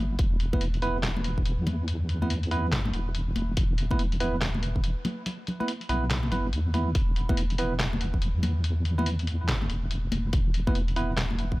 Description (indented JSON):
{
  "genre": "deep dubstep",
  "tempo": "142 BPM",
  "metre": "4/4",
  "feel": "swing 62% on 16ths, half-time",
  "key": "E minor",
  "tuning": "A4 = 441 Hz",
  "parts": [
    { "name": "deep soft wobble bass", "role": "bass", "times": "0.0-11.6 s", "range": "E1 to E2", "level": "-28 LUFS", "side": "equal", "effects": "chorus" },
    { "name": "electronic kick drum", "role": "drums", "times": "0.2-11.6 s", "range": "none", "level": "-26 LUFS", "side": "equal", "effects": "none" },
    { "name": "trip hop sampler-style drum kit", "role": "drums", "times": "0.2-11.5 s", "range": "handclaps, hi-hat, snare drum", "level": "-33 LUFS", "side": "left 1 dB", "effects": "none" },
    { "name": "bell-like tine electric piano", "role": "stabs", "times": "0.5-11.1 s", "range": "B3 to B4", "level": "-34 LUFS", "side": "right 3 dB", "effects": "dub echo" },
    { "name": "congas", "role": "percussion", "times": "0.5-11.4 s", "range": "none", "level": "-35 LUFS", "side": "left 2 dB", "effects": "dub echo" }
  ],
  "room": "little or no reverb",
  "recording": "none",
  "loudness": "-25 LUFS",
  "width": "side -20 dB against mid",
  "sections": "0.0-11.6 A section",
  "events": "none",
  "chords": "0.0 E5"
}